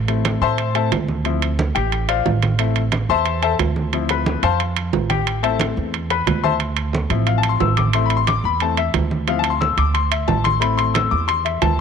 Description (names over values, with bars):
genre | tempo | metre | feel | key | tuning
latin, salsa | 179 BPM | 4/4 | straight | A minor | A4 = 440 Hz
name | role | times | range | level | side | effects
upright bass | bass | 0.0-11.8 s | A1 to A2 | -21 LUFS | right 2 dB | none
clear grand piano | accompaniment | 0.1-11.8 s | F3 to E6 | -20 LUFS | left 10 dB | none
congas | percussion | 0.1-11.8 s | none | -27 LUFS | right 2 dB | none
timbales | percussion | 0.1-11.8 s | none | -24 LUFS | right 14 dB | none
room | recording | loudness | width
moderate plate reverb, RT60 2.5 s | 1960s-style stereo with parts hard left and right | -17 LUFS | side -6 dB against mid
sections
0.0-11.8 A section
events
grand piano solo 0.0-11.8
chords
0.0 Am; 1.3 Dm7; 2.6 Am; 3.9 Dm7; 5.3 Am; 6.6 Dm7; 7.9 Am; 9.3 Dm7; 10.6 Am